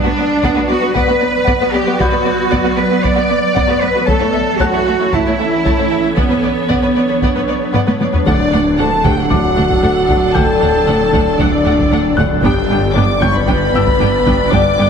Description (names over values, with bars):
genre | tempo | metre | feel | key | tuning
cinematic, hybrid orchestral and electronic film score | 115 BPM | 4/4 | straight | unclear | A4 = 442 Hz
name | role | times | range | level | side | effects
rich studio violin section | second line | 0.0-14.9 s | E4 to D6 | -20 LUFS | left 1 dB | none
swarming drone | sustained chords | 0.0-14.9 s | E3 to D5 | -20 LUFS | equal | built-in reverb
rich symphonic cello section | bass | 0.0-14.9 s | D2 to D5 | -18 LUFS | right 2 dB | none
bright baby grand piano | texture | 0.0-14.9 s | F#5 to G6 | -26 LUFS | left 2 dB | digital delay
rich symphonic viola section | accompaniment | 0.1-14.9 s | A3 to D4 | -22 LUFS | right 1 dB | none
taiko ensemble | drums | 0.4-14.9 s | none | -20 LUFS | equal | none
rich symphonic violin section | melody | 8.3-14.9 s | F#5 to G5 | -26 LUFS | left 3 dB | none
dark French horn section | sustained chords | 8.3-14.9 s | D4 to D5 | -17 LUFS | left 3 dB | none
rich symphonic double bass section | bass | 8.3-14.9 s | G1 to D2 | -20 LUFS | right 3 dB | none
snarling distorted saw bass | bass | 8.3-14.9 s | D1 to G1 | -22 LUFS | equal | distortion
room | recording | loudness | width
wet scoring stage reverb, RT60 1.9 s | heavily compressed radio sound | -11 LUFS | side -6 dB against mid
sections
0.0-8.3 A section; 8.3-14.9 B section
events
drum fill 7.7-8.3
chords
0.0 Bm/F#; 4.1 A/E; 6.2 Bmadd9/F#; 8.3 D; 12.4 G